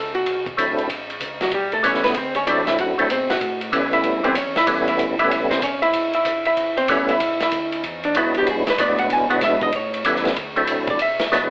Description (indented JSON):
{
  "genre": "soul jazz organ trio",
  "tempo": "190 BPM",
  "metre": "4/4",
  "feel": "swing 64% on 8ths",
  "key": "A mixolydian",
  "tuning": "A4 = 442 Hz",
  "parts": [
    { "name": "archtop guitar, miked and amplified", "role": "accompaniment", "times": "0.0-11.5 s", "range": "F#3 to G#5", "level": "-20 LUFS", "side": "equal", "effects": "none" },
    { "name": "mellow tonewheel organ", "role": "bass", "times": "0.0-11.5 s", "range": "F#1 to C#3", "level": "-37 LUFS", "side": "equal", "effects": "overdrive, chorus vibrato, slow rotary speaker" },
    { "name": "vintage drum kit", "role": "drums", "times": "0.1-11.4 s", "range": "hi-hat, kick drum, ride cymbal, snare drum", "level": "-25 LUFS", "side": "equal", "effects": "none" },
    { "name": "percussive tonewheel organ", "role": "melody", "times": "0.6-11.5 s", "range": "F#3 to E4", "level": "-20 LUFS", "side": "equal", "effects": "slow rotary speaker, chorus vibrato, plate reverb" }
  ],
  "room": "wet studio reverb, RT60 0.7 s",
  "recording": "heard from further back in the room, telephone sound",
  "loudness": "-17 LUFS",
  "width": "side -22 dB against mid",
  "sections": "0.0-11.5 A section",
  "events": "hollow-body jazz guitar solo 0.0-11.5; drum fill 11.3",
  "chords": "0.0 D7; 0.9 A7; 2.2 D7; 3.4 A7; 7.2 E7; 9.7 A7; 10.4 D7"
}